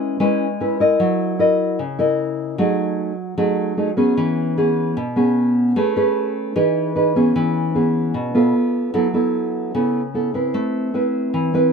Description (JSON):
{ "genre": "bossa nova", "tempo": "151 BPM", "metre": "4/4", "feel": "straight", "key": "E major", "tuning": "A4 = 436 Hz", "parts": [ { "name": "nylon-string guitar", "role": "solo", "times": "0.0-11.7 s", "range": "B2 to D#5", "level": "-17 LUFS", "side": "equal", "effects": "none" } ], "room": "light reverb", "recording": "none", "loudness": "-17 LUFS", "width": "side -5 dB against mid", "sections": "0.0-7.4 A section; 7.4-11.7 B section", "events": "none", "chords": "0.0 E6/G#; 1.0 F#6; 2.6 B13/F#; 4.2 E6; 5.8 Amaj9; 6.6 Emaj7; 7.4 E6; 8.5 F; 8.9 F#m7; 10.5 Amadd9" }